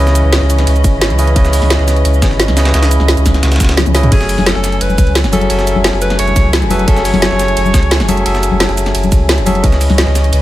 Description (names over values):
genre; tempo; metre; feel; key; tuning
liquid drum and bass; 174 BPM; 4/4; straight; F# dorian; A4 = 440 Hz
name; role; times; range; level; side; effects
barky tine electric piano; accompaniment; 0.0-10.4 s; C#3 to G#5; -17 LUFS; equal; overdrive, vintage 12-bit sampler grit, ping-pong delay
muted chamber string section; sustained chords; 0.0-10.4 s; E3 to G#5; -22 LUFS; left 1 dB; sidechain pumping
warm sub bass; bass; 0.0-10.4 s; F#1 to C#2; -13 LUFS; equal; none
breakbeat sampler-style drum kit; drums; 0.1-10.4 s; hi-hat, ride cymbal, snare drum; -22 LUFS; right 1 dB; high-pass filter on cymbals, high-pass filter on snare, high-pass filter on hats
drum and bass drum kit; drums; 0.1-10.4 s; crash cymbal, hi-hat, ride cymbal, shaker, snare drum, toms; -17 LUFS; equal; none
electronic kick drum; drums; 0.8-9.7 s; none; -11 LUFS; equal; none
bright alto saxophone; melody; 4.1-8.4 s; G#4 to C#5; -20 LUFS; equal; ping-pong delay
congas; percussion; 4.4-10.0 s; none; -20 LUFS; left 4 dB; none
room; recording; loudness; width
little or no reverb; none; -9 LUFS; side -15 dB against mid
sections
0.0-10.4 A section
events
kick drops out 3.8-4.1; drum fill 3.8-4.1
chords
0.0 C#m9; 4.1 F#m9; 9.6 C#m9